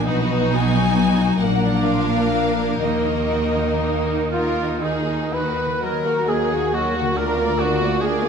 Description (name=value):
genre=classical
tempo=38-49 BPM (dotted quarters)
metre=6/8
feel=rubato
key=Eb minor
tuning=A4 = 439 Hz
part: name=warm studio violin section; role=melody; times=0.0-8.3 s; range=B4 to Ab5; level=-27 LUFS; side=left 5 dB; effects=none
part: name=rich studio violin section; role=second line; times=0.0-8.3 s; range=Bb3 to Cb5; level=-28 LUFS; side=equal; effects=none
part: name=rich studio viola section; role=accompaniment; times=0.0-8.3 s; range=Gb3 to D5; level=-24 LUFS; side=equal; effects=none
part: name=concert harp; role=arpeggios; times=0.0-8.3 s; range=Bb2 to Gb5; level=-26 LUFS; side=left 6 dB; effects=none
part: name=clear studio cello section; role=bass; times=0.0-8.3 s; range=D2 to Eb3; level=-26 LUFS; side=right 4 dB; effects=none
part: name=rich studio double bass section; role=bass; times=0.0-8.3 s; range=Bb1 to Eb2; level=-26 LUFS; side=right 5 dB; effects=none
part: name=clear clarinet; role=second line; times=4.3-8.3 s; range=Eb4 to Cb5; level=-25 LUFS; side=left 2 dB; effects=none
part: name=mellow hollow concert flute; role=second line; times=4.3-8.3 s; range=Eb5 to Cb6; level=-29 LUFS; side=equal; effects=none
part: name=warm oboe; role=second line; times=4.3-8.3 s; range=Eb4 to Cb5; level=-28 LUFS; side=right 2 dB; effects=none
part: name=warm French horn section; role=sustained chords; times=5.8-8.3 s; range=Bb3 to Gb4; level=-27 LUFS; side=left 6 dB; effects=none
room=wet recital hall reverb, RT60 1.6 s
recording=none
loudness=-18 LUFS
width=side -6 dB against mid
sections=0.0-5.8 A section; 5.8-8.3 B section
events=none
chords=0.1 B; 1.4 Bb; 2.8 Ebm; 7.2 Bb/D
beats=| 0.07 1.42 | 2.83 4.32 | 5.83 7.17